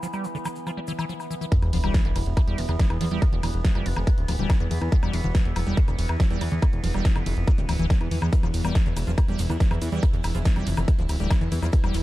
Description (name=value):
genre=psychedelic trance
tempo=141 BPM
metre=4/4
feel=straight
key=E phrygian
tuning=A4 = 438 Hz
part: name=overtone-sweeping drone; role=sustained chords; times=0.0-12.0 s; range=E3 to E4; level=-34 LUFS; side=equal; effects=chorus, built-in reverb, sidechain pumping
part: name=liquid acid bass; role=riff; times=0.0-12.0 s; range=D3 to G3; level=-31 LUFS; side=moving between left 6 dB and right 6 dB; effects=chorus, auto-pan, sidechain pumping, tape echo
part: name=egg shaker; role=percussion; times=0.0-1.5, 8.3-12.0 s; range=none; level=-46 LUFS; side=left 2 dB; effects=none
part: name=big-room dance drum kit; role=drums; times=0.1-12.0 s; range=hi-hat, ride cymbal, snare drum, woodblock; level=-34 LUFS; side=left 1 dB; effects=low-pass filter on perc, low-pass filter on hats, low-pass filter on cymbals, low-pass filter on snare
part: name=electronic kick drum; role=drums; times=1.5-11.8 s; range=none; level=-21 LUFS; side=equal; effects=none
part: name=sub drop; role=sound effects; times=1.6-3.2 s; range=none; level=-29 LUFS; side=equal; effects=none
part: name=fat analog bass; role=bass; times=1.6-12.0 s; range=D1 to E2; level=-25 LUFS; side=equal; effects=none
room=little or no reverb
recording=dark, warm production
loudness=-21 LUFS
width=side -16 dB against mid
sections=0.0-1.5 A section; 1.5-12.0 B section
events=drop 1.5-12.0; impact 1.5-3.2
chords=0.0 E5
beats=0.24 0.67 1.09 | 1.52 1.94 2.37 2.79 | 3.22 3.65 4.07 4.50 | 4.92 5.35 5.77 6.20 | 6.62 7.05 7.47 7.90 | 8.33 8.75 9.18 9.60 | 10.03 10.45 10.88 11.30 | 11.73